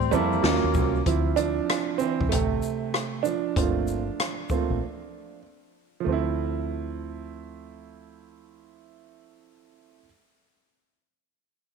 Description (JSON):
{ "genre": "hip hop, jazz-hop", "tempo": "96 BPM", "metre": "4/4", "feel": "swing 64% on 16ths", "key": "D minor", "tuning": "A4 = 440 Hz", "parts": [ { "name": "mellow trombone", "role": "melody", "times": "0.0-0.5 s", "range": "G3", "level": "-43 LUFS", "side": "left 2 dB", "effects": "none" }, { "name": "breathy tenor saxophone", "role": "second line", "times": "0.0-1.1 s", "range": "Bb3 to C4", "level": "-30 LUFS", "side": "left 11 dB", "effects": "none" }, { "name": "deep dub fingered electric bass", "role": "bass", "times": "0.0-10.0 s", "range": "G1 to A2", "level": "-29 LUFS", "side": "left 2 dB", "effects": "none" }, { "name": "congas and tube shaker", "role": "percussion", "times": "0.0-1.1 s", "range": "none", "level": "-40 LUFS", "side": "left 14 dB", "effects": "none" }, { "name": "warm concert grand piano", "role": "accompaniment", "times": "0.1-10.1 s", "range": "C3 to A4", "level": "-26 LUFS", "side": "right 10 dB", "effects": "none" }, { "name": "open jazz drum kit", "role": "drums", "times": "0.1-4.7 s", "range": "hi-hat, kick drum, rim click, shaker, snare drum", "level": "-28 LUFS", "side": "left 2 dB", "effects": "none" } ], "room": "moderate echo chamber reverb, RT60 2.1 s", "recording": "1960s-style stereo with parts hard left and right", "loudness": "-23 LUFS", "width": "side -5 dB against mid", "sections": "0.0-1.1 A section; 1.1-6.1 B section; 6.1-8.6 C section", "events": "grand piano solo 1.1-6.1; break 4.8-6.1", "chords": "0.4 Ebm7; 1.1 Dm7; 3.6 Gm11; 6.1 Dm7" }